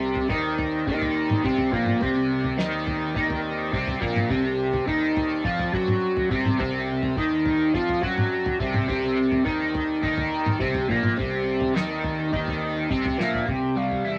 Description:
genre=psychedelic rock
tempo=105 BPM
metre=4/4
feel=straight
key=unclear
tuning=A4 = 440 Hz
part: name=hand-pumped harmonium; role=sustained chords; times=0.0-13.4 s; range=C4 to D5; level=-38 LUFS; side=equal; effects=none
part: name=overdriven semi-hollow guitar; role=riff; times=0.0-14.2 s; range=Bb2 to F#4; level=-26 LUFS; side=equal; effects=rotary speaker
part: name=fuzz picked electric bass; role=bass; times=0.0-14.2 s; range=Bb1 to F#2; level=-35 LUFS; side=equal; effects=overdrive
part: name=cloth-damped thuddy drum kit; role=drums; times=0.2-14.0 s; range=kick drum, snare drum, toms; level=-31 LUFS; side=equal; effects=none
part: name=mellow concert flute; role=melody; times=13.2-14.2 s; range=E5 to G5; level=-32 LUFS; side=equal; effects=none
room=wet small room ambience, RT60 0.5 s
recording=none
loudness=-24 LUFS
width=mono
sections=0.0-13.5 A section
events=drum fill 13.2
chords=0.0 Csus2; 13.5 C

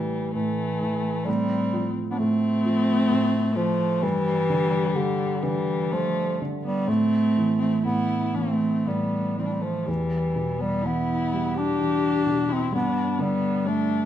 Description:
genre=celtic folk, Celtic slow air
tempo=57-66 BPM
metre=3/4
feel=rubato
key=A minor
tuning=A4 = 435 Hz
part: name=warm bass clarinet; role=melody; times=0.0-14.1 s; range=D3 to D4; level=-24 LUFS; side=right 1 dB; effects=none
part: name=warm viola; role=second line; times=0.0-14.1 s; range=G3 to G4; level=-29 LUFS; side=left 5 dB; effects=none
part: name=felt-muted upright piano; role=accompaniment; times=0.0-14.1 s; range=E2 to G3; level=-27 LUFS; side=equal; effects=none
room=moderate recital hall reverb, RT60 1.5 s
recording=minimal, uncompressed stereo recording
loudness=-22 LUFS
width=side -11 dB against mid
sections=0.0-9.9 A section; 9.9-14.1 B section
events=none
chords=0.0 A5; 1.3 Fadd9/A; 4.0 G5; 6.9 A5; 9.9 Em; 12.7 G5

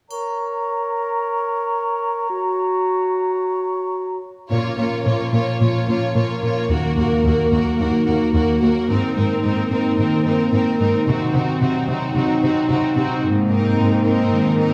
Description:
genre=cinematic, heroic adventure film score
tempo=110 BPM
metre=4/4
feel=straight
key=Bb minor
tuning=A4 = 439 Hz
part: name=mellow cor anglais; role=second line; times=0.1-4.2 s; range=Db5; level=-29 LUFS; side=equal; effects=none
part: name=mellow hollow concert flute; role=second line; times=0.1-4.2 s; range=Bb5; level=-28 LUFS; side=equal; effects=none
part: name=warm clarinet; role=second line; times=0.1-4.2 s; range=Gb4 to Bb4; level=-26 LUFS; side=equal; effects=none
part: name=triangle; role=percussion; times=0.1-1.2 s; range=none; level=-47 LUFS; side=equal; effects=none
part: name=warm symphonic violin section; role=melody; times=4.5-14.7 s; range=Gb4 to Db5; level=-29 LUFS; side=equal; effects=none
part: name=clear chamber violin section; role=second line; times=4.5-14.7 s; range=Eb4 to Gb4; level=-31 LUFS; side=equal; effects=none
part: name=rich symphonic viola section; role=accompaniment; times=4.5-14.7 s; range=Bb3 to C4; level=-28 LUFS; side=equal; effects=none
part: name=mellow French horn section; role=sustained chords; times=4.5-14.7 s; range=F3 to Eb4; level=-25 LUFS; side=equal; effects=none
part: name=concert harp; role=arpeggios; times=4.5-14.7 s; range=Ab2 to Bb4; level=-26 LUFS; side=equal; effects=none
part: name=rich studio cello section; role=bass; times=4.5-14.7 s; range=Eb2 to C3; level=-23 LUFS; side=equal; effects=none
room=wet recital hall reverb, RT60 1.6 s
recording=heard from further back in the room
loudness=-19 LUFS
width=mono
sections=0.1-4.5 A section; 4.5-14.7 B section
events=build-up 4.5-14.7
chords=0.1 Bbm; 2.3 Gb; 4.5 Bbm; 6.7 Ebm; 8.9 Abadd9; 11.1 Cdim; 13.2 Abadd9

